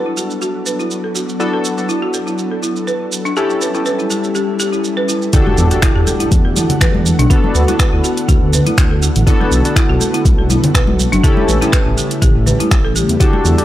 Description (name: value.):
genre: afro house.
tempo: 122 BPM.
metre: 4/4.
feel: swing 54% on 16ths.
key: E dorian.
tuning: A4 = 441 Hz.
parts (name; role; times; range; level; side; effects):
ethereal airy pad; sustained chords; 0.0-13.6 s; C#3 to F#5; -23 LUFS; left 1 dB; ensemble chorus, built-in reverb, sidechain pumping.
warm analog keys; stabs; 0.0-13.6 s; B3 to A4; -20 LUFS; left 2 dB; chorus, sidechain pumping, tape echo.
folk marimba with hard mallets; arpeggios; 0.1-13.4 s; D4 to B4; -20 LUFS; right 1 dB; sidechain pumping, tape echo.
deep house drum kit; drums; 0.2-13.6 s; finger snaps, hi-hat, shaker; -21 LUFS; right 2 dB; none.
electronic kick drum; drums; 5.3-13.3 s; none; -13 LUFS; equal; none.
congas; percussion; 5.3-13.4 s; none; -21 LUFS; left 2 dB; none.
impact; sound effects; 5.3-7.3 s; none; -24 LUFS; equal; none.
dark detuned saw bass; bass; 5.6-13.5 s; F#1 to E2; -16 LUFS; equal; sidechain pumping.
room: light reverb.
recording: dry, gritty hardware recording.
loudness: -12 LUFS.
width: side -13 dB against mid.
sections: 0.0-5.3 A section; 5.3-13.6 B section.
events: drop 5.3-13.6; impact 5.3-7.3.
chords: 0.0 D6; 3.4 A7; 5.3 Em11; 7.3 D6; 9.3 Bm7; 11.2 A7.